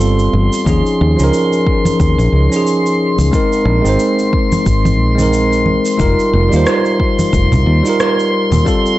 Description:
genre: sunset chillout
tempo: 90 BPM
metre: 4/4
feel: swing 57% on 16ths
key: unclear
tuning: A4 = 441 Hz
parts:
  - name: bell-like tine electric piano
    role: accompaniment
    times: 0.0-9.0 s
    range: F3 to C5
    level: -14 LUFS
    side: equal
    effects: auto-pan, tape echo
  - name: fingered electric bass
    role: bass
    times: 0.0-8.6 s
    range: F1 to Eb2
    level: -13 LUFS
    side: equal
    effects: none
  - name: electronic shaker and rim click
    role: drums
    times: 0.0-9.0 s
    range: none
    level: -24 LUFS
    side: right 1 dB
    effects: none
  - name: drifting glass-harmonics texture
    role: texture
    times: 0.0-9.0 s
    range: C6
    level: -20 LUFS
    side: right 1 dB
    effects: chorus, built-in reverb
  - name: congas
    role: percussion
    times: 0.3-8.6 s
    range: none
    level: -18 LUFS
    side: right 1 dB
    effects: none
  - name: electronic kick drum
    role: drums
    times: 0.7-8.8 s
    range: none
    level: -17 LUFS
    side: equal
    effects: overdrive
room: little or no reverb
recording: dry, gritty hardware recording, cassette tape, nothing above 8.0 kHz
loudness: -11 LUFS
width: side -15 dB against mid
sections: 0.0-9.0 A section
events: none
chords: 0.0 G9sus4; 0.7 Eb9sus4; 3.3 Bb9sus4; 6.0 F9sus4

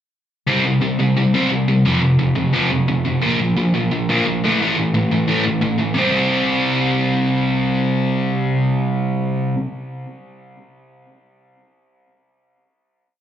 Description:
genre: punk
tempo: 176 BPM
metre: 4/4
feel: straight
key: C mixolydian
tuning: A4 = 440 Hz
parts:
  - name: sludgy distorted guitar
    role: solo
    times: 0.5-9.6 s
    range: F2 to C4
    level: -16 LUFS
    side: equal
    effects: overdrive, slapback echo, tape echo
room: wet club reverb, RT60 0.5 s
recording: live gig heard through the venue's PA, club reverb, nothing above 7.8 kHz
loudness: -16 LUFS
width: side -10 dB against mid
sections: 0.5-6.0 verse; 6.0-8.6 final chord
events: none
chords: 0.5 C5; 1.8 F5; 3.2 Bb5; 4.4 A5; 6.0 C5

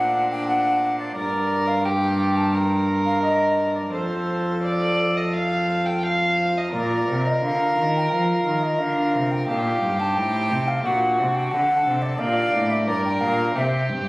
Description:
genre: classical, baroque-style sonata movement with continuo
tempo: 88 BPM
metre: 4/4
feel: straight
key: Bb major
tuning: A4 = 440 Hz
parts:
  - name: bright baroque flute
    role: melody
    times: 0.0-13.9 s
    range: A4 to A5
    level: -24 LUFS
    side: equal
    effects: none
  - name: dark violin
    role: second line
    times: 0.0-14.1 s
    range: D4 to G5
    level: -25 LUFS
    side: right 1 dB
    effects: none
  - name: pipe organ, principal chorus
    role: accompaniment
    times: 0.0-14.1 s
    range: F2 to C5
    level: -29 LUFS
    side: equal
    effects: none
  - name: dark cello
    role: bass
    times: 0.0-14.1 s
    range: F2 to F3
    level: -25 LUFS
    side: equal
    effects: none
room: moderate recital hall reverb, RT60 1.3 s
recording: recorded on a phone in the room, club ambience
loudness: -19 LUFS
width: side -22 dB against mid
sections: 0.0-14.1 A section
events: none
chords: 0.0 D5/Bb; 1.2 Gm; 3.9 F; 6.7 Bb; 9.5 F9/G; 10.8 D7/Bb; 12.2 Gm; 13.6 C7

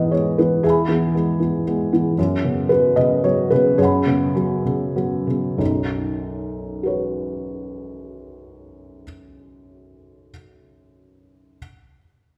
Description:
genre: neoclassical minimalist piano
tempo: 93-118 BPM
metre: 3/4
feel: rubato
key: B major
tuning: A4 = 441 Hz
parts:
  - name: felt-muted upright piano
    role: solo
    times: 0.0-11.6 s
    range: B1 to B5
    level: -20 LUFS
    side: equal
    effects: none
room: wet recital hall reverb, RT60 1.5 s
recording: recorded in a church or concert hall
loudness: -20 LUFS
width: mono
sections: 0.0-5.6 A section; 5.6-9.3 B section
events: slowing down 1.4-5.6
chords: 0.0 E; 2.2 Bsus2/F#; 5.6 Badd9

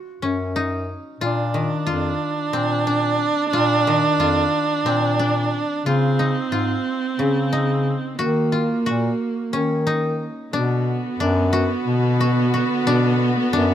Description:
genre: contemporary instrumental, chamber music in an uneven meter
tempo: 180 BPM (eighths)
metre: 7/8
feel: straight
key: unclear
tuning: A4 = 440 Hz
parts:
  - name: koto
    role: arpeggios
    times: 0.0-13.7 s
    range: Db3 to Gb4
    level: -25 LUFS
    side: left 3 dB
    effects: none
  - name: mellow bass clarinet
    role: bass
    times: 0.2-13.7 s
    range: F2 to Eb3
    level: -22 LUFS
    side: left 2 dB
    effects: none
  - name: rich viola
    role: second line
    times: 1.2-13.7 s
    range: Bb3 to D4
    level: -22 LUFS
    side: right 3 dB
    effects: none
  - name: warm symphonic string section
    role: sustained chords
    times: 10.5-13.7 s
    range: D3 to F#4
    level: -28 LUFS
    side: left 1 dB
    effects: none
room: light reverb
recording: none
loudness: -18 LUFS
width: side -10 dB against mid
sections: 0.0-10.5 A section; 10.5-13.7 B section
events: none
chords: 0.0 Gb5; 1.2 Bb; 5.9 Db; 8.2 Ebm; 10.5 Bm

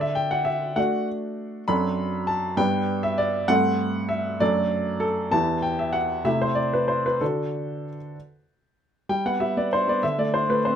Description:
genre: classical-period piano sonatina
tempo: 65 BPM (dotted quarters)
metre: 6/8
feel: straight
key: G major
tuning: A4 = 439 Hz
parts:
  - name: clear baby grand piano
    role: solo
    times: 0.0-10.8 s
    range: E2 to B5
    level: -22 LUFS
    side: equal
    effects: none
room: light reverb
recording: none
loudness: -22 LUFS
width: side -8 dB against mid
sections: 0.0-9.1 A section; 9.1-10.8 B section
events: none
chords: 0.0 D; 1.7 D7/F#; 2.6 G; 3.5 Am7/G; 4.4 D/F#; 5.3 Em; 6.3 Am7/C; 7.2 D; 9.1 G; 10.0 D5

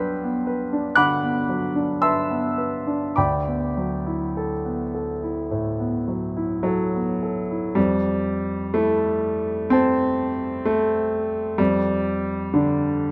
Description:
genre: classical, impressionist solo piano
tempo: 50-65 BPM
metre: 4/4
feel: rubato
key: D mixolydian, F major from 7.8 s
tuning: A4 = 438 Hz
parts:
  - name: clear concert grand piano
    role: solo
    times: 0.0-13.1 s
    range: D2 to G6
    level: -23 LUFS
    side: equal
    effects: none
room: light reverb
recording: close, detailed microphones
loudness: -23 LUFS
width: mono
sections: 0.0-7.8 A section; 7.8-13.1 B section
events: none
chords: 0.0 Gmaj7; 3.2 D69; 7.8 Fmaj7; 11.6 G7(no3)/F

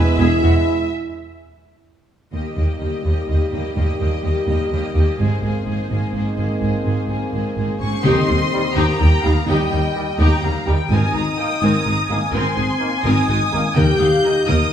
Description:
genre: cinematic, epic orchestral film score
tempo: 84 BPM (dotted quarters)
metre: 6/8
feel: straight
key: Eb major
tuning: A4 = 440 Hz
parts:
  - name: clear symphonic violin section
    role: melody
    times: 0.0-14.7 s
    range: B4 to G6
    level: -26 LUFS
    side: left 1 dB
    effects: none
  - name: rich symphonic violin section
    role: second line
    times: 0.0-14.7 s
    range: G4 to Bb5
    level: -27 LUFS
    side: left 2 dB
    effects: none
  - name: rich studio viola section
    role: accompaniment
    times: 0.0-14.7 s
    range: Eb3 to E5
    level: -26 LUFS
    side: equal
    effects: none
  - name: clear trombone section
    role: sustained chords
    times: 0.0-14.3 s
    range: Eb3 to Bb3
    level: -28 LUFS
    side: right 3 dB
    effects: none
  - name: mellow tuba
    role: bass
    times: 0.0-0.5, 8.0-14.6 s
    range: E1 to Eb2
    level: -23 LUFS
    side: equal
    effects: none
  - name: rich symphonic cello section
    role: bass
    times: 0.0-14.6 s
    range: Eb2 to Ab2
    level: -24 LUFS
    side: right 1 dB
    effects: none
  - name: rich symphonic double bass section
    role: bass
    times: 0.0-14.6 s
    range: E1 to Eb2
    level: -21 LUFS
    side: right 1 dB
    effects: none
  - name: mellow French horn section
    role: sustained chords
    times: 0.2-14.7 s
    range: G3 to G4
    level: -25 LUFS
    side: left 2 dB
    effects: none
  - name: timpani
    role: percussion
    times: 8.0-8.7, 13.8-14.4 s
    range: Eb3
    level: -24 LUFS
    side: left 2 dB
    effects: none
room: wet scoring stage reverb, RT60 1.5 s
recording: small room ambience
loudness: -16 LUFS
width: side -9 dB against mid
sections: 0.0-2.3 A section; 2.3-8.0 B section; 8.0-14.7 C section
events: break 0.9-2.3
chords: 0.0 E; 0.9 N.C.; 2.3 Eb; 5.2 Abadd9; 8.0 Eb; 10.9 Abadd9; 13.8 Eb

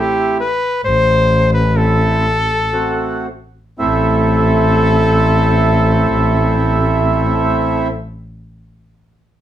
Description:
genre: klezmer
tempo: 54-69 BPM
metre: 3/4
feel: straight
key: A minor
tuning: A4 = 440 Hz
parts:
  - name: clear cornet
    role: melody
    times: 0.0-7.9 s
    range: G4 to C5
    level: -17 LUFS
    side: left 1 dB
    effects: none
  - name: mellow accordion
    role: accompaniment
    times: 0.0-7.9 s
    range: A3 to F#4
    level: -16 LUFS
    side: right 2 dB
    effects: none
  - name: rich double bass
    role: bass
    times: 0.8-7.9 s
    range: A1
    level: -16 LUFS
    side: equal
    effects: none
room: wet studio reverb, RT60 0.6 s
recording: heard from further back in the room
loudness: -12 LUFS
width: side -11 dB against mid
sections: 0.0-3.8 A section; 3.8-7.1 B section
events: slowing down 0.0-3.8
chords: 0.0 Am

